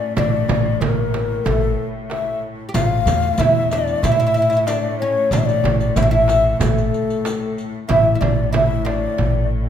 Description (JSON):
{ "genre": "Arabic maqam ensemble", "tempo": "93 BPM", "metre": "4/4", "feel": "straight", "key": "A maqam hijaz", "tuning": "A4 = 439 Hz", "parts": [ { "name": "oud", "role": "melody", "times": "0.0-9.5 s", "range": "A3 to G4", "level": "-22 LUFS", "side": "right 2 dB", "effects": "none" }, { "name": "breathy bright low ney", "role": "second line", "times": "0.0-9.5 s", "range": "A4 to F5", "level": "-22 LUFS", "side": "left 6 dB", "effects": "none" }, { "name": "rich chamber cello section", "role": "drone", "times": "0.0-9.7 s", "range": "A2", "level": "-28 LUFS", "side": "left 3 dB", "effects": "none" }, { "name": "upright bass", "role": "bass", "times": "0.2-9.7 s", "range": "A1 to A2", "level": "-22 LUFS", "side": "left 1 dB", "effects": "none" }, { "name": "darbuka", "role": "percussion", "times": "0.2-9.6 s", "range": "none", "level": "-24 LUFS", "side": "right 2 dB", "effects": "none" }, { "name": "frame drum", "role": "percussion", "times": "0.2-9.3 s", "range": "none", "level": "-25 LUFS", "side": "right 6 dB", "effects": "none" }, { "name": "riq", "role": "percussion", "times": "2.7-7.7 s", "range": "none", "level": "-33 LUFS", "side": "left 4 dB", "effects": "none" } ], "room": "moderate concert hall reverb, RT60 1.9 s", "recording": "minimal, uncompressed stereo recording", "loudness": "-16 LUFS", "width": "side -9 dB against mid", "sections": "0.0-7.9 A section; 7.9-9.7 B section", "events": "none", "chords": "none" }